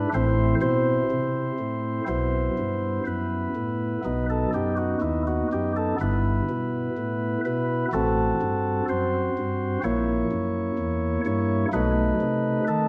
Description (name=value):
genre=classical, chorale-style piece for pipe organ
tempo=62 BPM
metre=4/4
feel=straight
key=unclear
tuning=A4 = 440 Hz
part: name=chamber organ, flutes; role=solo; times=0.0-12.9 s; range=G1 to C#5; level=-25 LUFS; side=equal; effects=none
room=wet recital hall reverb, RT60 1.6 s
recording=none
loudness=-25 LUFS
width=mono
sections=0.0-12.9 A section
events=none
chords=0.1 Am; 2.1 Bsus4; 4.0 B; 6.0 Em/G; 7.9 F#dim/A; 9.8 A#dim7; 11.7 B7